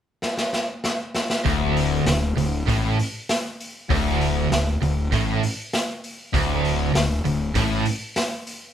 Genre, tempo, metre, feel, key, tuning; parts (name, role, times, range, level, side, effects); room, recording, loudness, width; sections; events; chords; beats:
classic rock; 98 BPM; 4/4; straight; A4 = 437 Hz
raw garage drum kit; drums; 0.2-8.6 s; hi-hat, kick drum, snare drum; -26 LUFS; equal
crunchy overdriven guitar; riff; 1.4-7.9 s; D2 to A2; -24 LUFS; right 5 dB; tremolo
sludgy distorted guitar; riff; 1.5-7.9 s; D2 to A2; -25 LUFS; left 6 dB; overdrive
fuzz fingered electric bass; bass; 1.5-7.8 s; D1 to A1; -26 LUFS; equal; overdrive
moderate studio reverb, RT60 0.5 s; band playing live in one room; -20 LUFS; side -9 dB against mid
0.0-1.5 A section; 1.5-8.7 B section
drum fill 0.2-1.5
0.0 N.C.; 1.5 D5
0.23 0.84 | 1.45 2.07 2.68 3.29 | 3.90 4.51 5.12 5.73 | 6.34 6.95 7.56 8.17